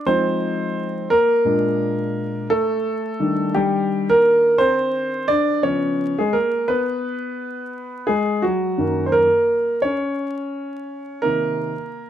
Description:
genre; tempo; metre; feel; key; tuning
hip hop; 86 BPM; 4/4; swing 59% on 16ths; unclear; A4 = 442 Hz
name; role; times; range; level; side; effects
dark baby grand piano; solo; 0.0-12.1 s; Gb2 to D5; -18 LUFS; equal; none
room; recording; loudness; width
moderate echo chamber reverb, RT60 1.4 s; vinyl crackle; -18 LUFS; side -10 dB against mid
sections
0.0-12.1 A section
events
grand piano solo 0.0-12.1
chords
0.1 Fm7; 1.5 Bb7; 2.9 Ebmaj7; 5.6 Db7; 8.4 Gb6; 11.2 Cm7

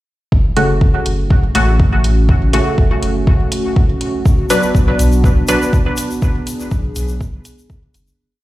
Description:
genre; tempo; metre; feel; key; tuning
dub techno; 122 BPM; 4/4; straight; F# minor; A4 = 440 Hz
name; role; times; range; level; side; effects
dark analog pad; sustained chords; 0.8-8.2 s; A3 to G#4; -22 LUFS; right 1 dB; chorus, sidechain pumping
warm sub bass; bass; 0.3-8.1 s; F#1 to B1; -16 LUFS; equal; sidechain pumping
electronic kick drum; drums; 0.3-7.8 s; none; -14 LUFS; equal; none
filtered dub chord stab; stabs; 0.6-5.6 s; C#3 to B4; -18 LUFS; equal; chorus, phaser, sidechain pumping, dub echo
electronic hi-hat; drums; 0.6-8.0 s; none; -26 LUFS; right 1 dB; none
tube shaker; percussion; 4.3-8.2 s; none; -29 LUFS; left 4 dB; none
room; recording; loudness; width
light reverb, digital ambience; played on a big sound system in a bare room, large studio reverb; -12 LUFS; side -16 dB against mid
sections
0.3-8.2 groove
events
fade-out 5.6-8.2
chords
0.3 F#m; 4.3 Bm

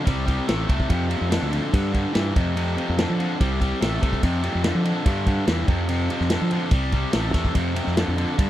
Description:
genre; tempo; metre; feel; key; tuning
classic rock; 144 BPM; 4/4; straight; unclear; A4 = 440 Hz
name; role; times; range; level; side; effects
distorted electric guitar; riff; 0.0-8.5 s; F2 to A3; -25 LUFS; left 1 dB; overdrive
fuzz fingered electric bass; bass; 0.1-8.5 s; A1 to F3; -24 LUFS; equal; overdrive
vintage drum kit; drums; 0.1-8.5 s; kick drum, ride cymbal, snare drum; -23 LUFS; equal; none
room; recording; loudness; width
little or no reverb; dry, close 1970s-style studio recording; -20 LUFS; side -13 dB against mid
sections
0.0-8.5 A section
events
none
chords
0.1 C5; 0.9 F5; 1.7 G5; 2.4 F5; 3.4 C5; 4.2 F5; 5.1 G5; 5.7 F5; 6.7 C; 7.6 F5

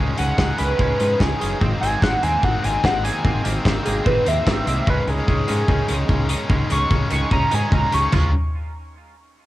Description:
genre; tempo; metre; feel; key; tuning
indie rock; 147 BPM; 4/4; straight; unclear; A4 = 440 Hz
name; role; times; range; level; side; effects
heavy high-gain guitar; riff; 0.0-8.3 s; Ab2 to Eb4; -27 LUFS; left 3 dB; distortion, cassette tape
twangy electric guitar; riff; 0.0-8.3 s; Eb3 to F4; -28 LUFS; right 4 dB; analog chorus, cassette tape, analog delay
growling fingered electric bass; bass; 0.0-8.3 s; Gb1 to Ab2; -24 LUFS; equal; overdrive
overdriven synth lead; melody; 0.2-8.1 s; Ab4 to Db6; -23 LUFS; equal; distortion, chorus, phaser, cassette tape, analog delay
loose indie drum kit; drums; 0.2-8.2 s; crash cymbal, hi-hat, kick drum, snare drum, toms; -21 LUFS; equal; cassette tape
room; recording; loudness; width
light reverb, studio ambience; home recording on cassette; -17 LUFS; side -16 dB against mid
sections
0.0-8.1 A section; 8.1-9.5 B section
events
analog synth lead solo 0.0-8.1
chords
0.0 Dbsus2; 1.6 Abadd9; 4.9 Dbsus2; 8.1 Db

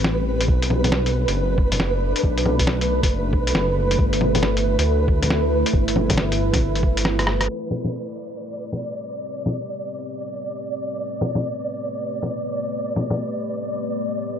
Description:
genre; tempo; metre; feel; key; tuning
future garage; 137 BPM; 4/4; swing 64% on 16ths; A dorian; A4 = 442 Hz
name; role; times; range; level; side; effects
deep dark ambient pad; sustained chords; 0.0-14.4 s; G3 to B4; -26 LUFS; right 1 dB; chorus, built-in reverb, sidechain pumping
dark detuned saw bass; bass; 0.0-7.5 s; F#1 to D2; -22 LUFS; equal; tube saturation, sidechain pumping
lo-fi sampler-style drum kit; drums; 0.0-13.2 s; bongos, crash cymbal, hi-hat, rim click, snare drum; -24 LUFS; left 1 dB; low-pass filter on hats, low-pass filter on perc, low-pass filter on snare, low-pass filter on cymbals
flickering grainy texture; texture; 0.0-14.4 s; B4 to D5; -28 LUFS; right 1 dB; built-in reverb
electronic kick drum; drums; 0.5-6.9 s; none; -20 LUFS; equal; none
room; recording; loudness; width
light reverb; low-pass filter; -20 LUFS; side -8 dB against mid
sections
0.0-7.5 A section; 7.5-14.4 B section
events
drum fill 7.1-7.5; band accent 7.4; filter sweep on drum 7.5-14.4; filter sweep 7.5-14.4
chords
0.5 Bm7; 4.0 G69; 7.5 Am9

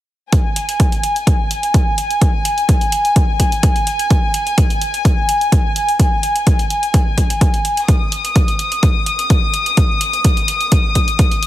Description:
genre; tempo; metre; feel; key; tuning
piano house; 127 BPM; 4/4; straight; unclear; A4 = 436 Hz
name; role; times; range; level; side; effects
dark studio string section; sustained chords; 0.3-11.5 s; Ab5 to Eb6; -18 LUFS; left 1 dB; sidechain pumping
electronic hi-hat; drums; 0.3-11.5 s; none; -23 LUFS; right 1 dB; overdrive
electronic kick drum; drums; 0.3-11.3 s; none; -14 LUFS; equal; overdrive
room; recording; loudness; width
light reverb; heavily compressed radio sound, multiband compression; -13 LUFS; side -14 dB against mid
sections
0.3-11.5 A section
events
none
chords
none

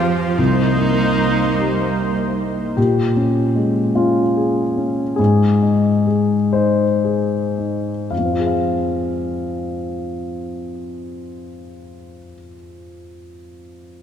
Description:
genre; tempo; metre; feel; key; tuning
neoclassical piano and strings; 36-51 BPM (dotted quarters); 6/8; rubato; F minor; A4 = 439 Hz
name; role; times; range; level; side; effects
dark cello; second line; 0.0-2.4 s; F3 to G3; -22 LUFS; right 8 dB; none
dark baby grand piano; accompaniment; 0.0-14.0 s; C2 to F5; -18 LUFS; left 2 dB; none
warm viola; accompaniment; 0.0-2.2 s; Eb4 to F4; -25 LUFS; right 1 dB; none
lush unison pad; sustained chords; 0.0-2.8 s; F3 to C5; -23 LUFS; equal; chorus
room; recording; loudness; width
wet church reverb, RT60 3.5 s; recorded in a church or concert hall; -16 LUFS; side -8 dB against mid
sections
0.0-2.8 A section; 2.8-8.1 B section; 8.1-11.3 C section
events
slowing down 1.6-8.1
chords
0.4 Cm7; 2.8 Bbm7; 5.2 Ab; 8.1 Fm

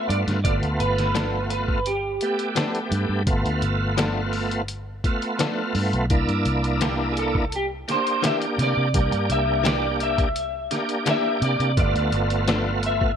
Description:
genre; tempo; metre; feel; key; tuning
straight-eighth soul blues; 85 BPM; 4/4; straight; G mixolydian; A4 = 444 Hz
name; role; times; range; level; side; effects
electric guitar through a small old amp; melody; 0.0-13.2 s; G4 to E5; -26 LUFS; equal; ensemble chorus, slapback echo
bright tonewheel organ; accompaniment; 0.0-13.1 s; A3 to G4; -26 LUFS; right 2 dB; slow rotary speaker, overdrive, chorus vibrato
vintage muted fingered electric bass; bass; 0.1-13.2 s; G1 to C3; -25 LUFS; equal; none
lo-fi sampler-style drum kit; drums; 0.1-13.2 s; hi-hat, kick drum, snare drum; -26 LUFS; equal; none
direct-recorded clean electric guitar; stabs; 1.1-12.7 s; E3 to A4; -29 LUFS; left 7 dB; none
room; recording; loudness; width
little or no reverb; none; -20 LUFS; side -8 dB against mid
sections
0.0-13.2 A section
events
none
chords
0.0 G9; 6.1 C9; 11.8 G9

